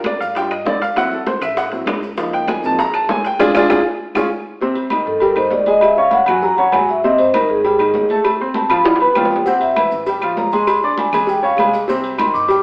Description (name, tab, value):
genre	Afro-Cuban jazz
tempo	198 BPM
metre	4/4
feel	straight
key	unclear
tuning	A4 = 441 Hz
part	clear upright piano	accompaniment	0.0-12.6 s	C3 to D6	-18 LUFS	equal	none
part	upright bass	bass	0.0-12.6 s	G1 to G#2	-34 LUFS	equal	none
part	congas	percussion	0.0-12.6 s	none	-29 LUFS	equal	none
part	timbales and agogo bells	percussion	0.0-12.6 s	none	-21 LUFS	equal	none
part	bongos and cowbell	percussion	0.1-12.6 s	none	-24 LUFS	left 1 dB	none
part	claves	percussion	0.1-12.3 s	none	-31 LUFS	left 1 dB	none
part	maracas	percussion	0.1-4.2, 9.5-12.6 s	none	-44 LUFS	right 1 dB	none
part	vibraphone with medium mallets	melody	5.1-12.6 s	Ab4 to D6	-15 LUFS	equal	none
room	wet stone room reverb, RT60 1.1 s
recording	band playing live in one room, AM radio sound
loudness	-13 LUFS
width	side -26 dB against mid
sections	0.0-4.6 A section; 4.6-12.6 A section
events	upright piano solo 0.0-4.6; band accent 3.4-4.6; drum fill 4.0-4.6, 8.9-9.5; vibraphone solo 4.6-12.6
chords	0.0 Ebmaj7; 1.0 D9; 2.2 Db69; 3.4 Ddim; 4.0 Db; 4.6 Cm; 5.8 Db5; 6.4 F#sus2; 7.0 Abmaj7#11; 8.2 Dm7; 8.9 G7; 9.5 C; 10.1 Bb13; 10.7 Abadd11; 11.3 Db; 11.9 Cm